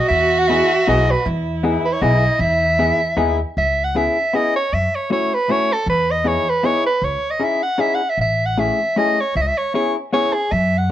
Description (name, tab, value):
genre	musette waltz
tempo	156 BPM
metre	3/4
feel	swing 55% on 8ths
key	E major, C# minor from 3.6 s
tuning	A4 = 440 Hz
part	clear soprano saxophone	melody	0.0-10.9 s	G#4 to F#5	-18 LUFS	right 1 dB	plate reverb
part	dark violin	second line	0.0-3.4 s	E4 to F#4	-22 LUFS	right 3 dB	none
part	upright bass	bass	0.1-10.9 s	A1 to F#2	-21 LUFS	equal	none
part	hollow-body jazz guitar	accompaniment	0.5-10.3 s	A3 to G#4	-20 LUFS	left 4 dB	none
room	moderate small room ambience, RT60 0.5 s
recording	worn, warbling old tape, cassette tape, warbly pitch drift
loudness	-16 LUFS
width	side -12 dB against mid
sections	0.0-3.6 A section; 3.6-10.9 B section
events	none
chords	0.0 Emaj7; 3.6 C#m7; 4.7 F#m7; 5.9 Emaj7; 7.0 C#madd9; 8.2 Amaj7; 9.4 C#m7